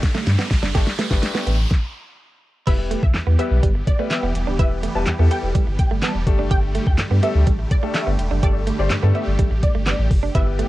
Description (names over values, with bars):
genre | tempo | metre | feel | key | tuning
dance-pop | 125 BPM | 4/4 | straight | unclear | A4 = 440 Hz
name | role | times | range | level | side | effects
supersaw chords | sustained chords | 0.0-10.7 s | D3 to G4 | -30 LUFS | right 1 dB | phaser, sidechain pumping, cassette tape
smooth R&B drum kit | drums | 0.0-10.7 s | crash cymbal, handclaps, hi-hat, kick drum, snare drum | -19 LUFS | equal | cassette tape
riser | sound effects | 0.0-1.7 s | none | -30 LUFS | right 2 dB | none
direct-recorded clean electric guitar | riff | 0.1-10.7 s | G3 to G4 | -27 LUFS | right 9 dB | wide subtle chorus, cassette tape
warm sub bass | bass | 0.3-10.6 s | D1 to G2 | -20 LUFS | equal | sidechain pumping
bright concert grand piano | accompaniment | 0.7-10.7 s | G3 to C5 | -28 LUFS | left 8 dB | sidechain pumping, cassette tape
wide unison pluck | melody | 2.7-10.5 s | D5 to A5 | -29 LUFS | equal | ensemble chorus, cassette tape
room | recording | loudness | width
little or no reverb | home recording on cassette | -17 LUFS | side -16 dB against mid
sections
0.0-2.7 A section; 2.7-10.7 B section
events
build-up 0.0-2.7; drum fill 0.0-1.7; riser 0.0-2.7; stop 1.7-2.7; drop 2.7-10.7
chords
0.0 Gsus2; 2.7 Em; 6.3 Gsus2